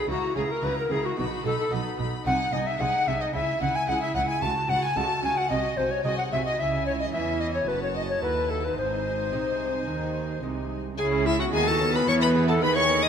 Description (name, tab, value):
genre	classical, baroque-style concerto movement with solo episodes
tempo	110 BPM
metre	4/4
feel	straight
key	C# minor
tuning	A4 = 440 Hz
part	mellow tenor recorder	melody	0.0-13.1 s	E4 to A5	-27 LUFS	left 2 dB	none
part	rich chamber violin section	melody	0.0-13.1 s	E5 to D#6	-32 LUFS	left 2 dB	none
part	warm symphonic violin section	second line	0.0-13.1 s	E4 to A5	-34 LUFS	left 1 dB	none
part	lute	accompaniment	0.0-13.1 s	D#2 to G#4	-34 LUFS	right 1 dB	none
part	warm chamber viola section	accompaniment	0.0-13.1 s	B3 to F#4	-33 LUFS	equal	none
part	rich chamber cello section	bass	0.1-13.1 s	D#2 to E3	-33 LUFS	right 4 dB	none
part	warm chamber double bass section	bass	0.1-13.1 s	F#1 to E2	-33 LUFS	right 4 dB	none
room	wet concert hall reverb, RT60 2.3 s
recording	none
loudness	-23 LUFS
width	side -7 dB against mid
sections	0.0-11.0 A section; 11.0-13.1 B section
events	none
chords	0.1 F#7/C#; 1.2 B; 2.3 G#/B#; 3.3 C#m; 4.4 D#m7b5/C#; 5.5 G#7/B#; 6.6 C#m; 7.7 D#dim/F#; 8.8 G#; 11.0 C#m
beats	| 0.09 0.63 1.17 1.72 | 2.26 2.80 3.34 3.88 | 4.42 4.96 5.51 6.05 | 6.59 7.13 7.67 8.22 | 8.77 9.33 9.88 10.43 | 10.98 11.53 12.07 12.62